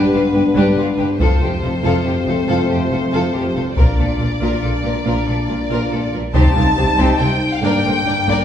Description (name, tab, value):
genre	cinematic, epic orchestral film score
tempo	140 BPM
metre	3/4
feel	straight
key	C dorian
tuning	A4 = 440 Hz
part	rich symphonic violin section	melody	0.0-8.4 s	B4 to A5	-22 LUFS	left 2 dB	none
part	warm symphonic violin section	second line	0.0-8.4 s	F4 to D5	-24 LUFS	left 3 dB	none
part	warm symphonic viola section	accompaniment	0.0-8.4 s	Bb3 to F4	-24 LUFS	equal	none
part	mellow French horn section	sustained chords	0.0-8.4 s	G3 to Eb4	-21 LUFS	left 3 dB	none
part	rich symphonic cello section	bass	0.1-8.3 s	F2 to C3	-23 LUFS	right 2 dB	none
part	rich symphonic double bass section	bass	0.1-8.4 s	F1 to C2	-22 LUFS	right 2 dB	none
part	taiko ensemble	drums	1.2-7.2 s	none	-17 LUFS	equal	none
part	sub drop	sound effects	6.5-7.6 s	none	-27 LUFS	equal	none
room	wet recital hall reverb, RT60 1.5 s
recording	recorded in a church or concert hall, studio reverb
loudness	-14 LUFS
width	side -9 dB against mid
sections	0.0-6.3 A section; 6.3-8.4 B section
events	build-up 0.0-6.3; impact 6.3-7.6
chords	0.0 G; 1.2 F; 3.8 Bb; 6.3 Cm; 7.6 Gm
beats	0.34 0.76 | 1.19 1.62 2.05 | 2.48 2.91 3.34 | 3.77 4.19 4.62 | 5.05 5.48 5.91 | 6.34 6.77 7.20 | 7.62 8.05